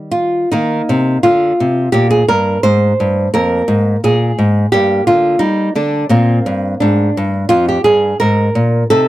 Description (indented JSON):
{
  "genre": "classical, baroque-style dance for nylon-string guitar",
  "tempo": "86 BPM",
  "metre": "4/4",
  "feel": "rubato",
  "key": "Eb major",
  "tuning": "A4 = 440 Hz",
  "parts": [
    { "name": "nylon-string guitar", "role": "solo", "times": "0.0-9.1 s", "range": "F2 to C5", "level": "-11 LUFS", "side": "equal", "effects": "none" }
  ],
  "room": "little or no reverb",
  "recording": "dry, close 1970s-style studio recording",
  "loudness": "-11 LUFS",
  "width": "side -15 dB against mid",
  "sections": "0.5-9.1 A section",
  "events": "none",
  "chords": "0.0 Eb; 3.3 Bb5/F; 4.7 Gm7; 6.1 Bb"
}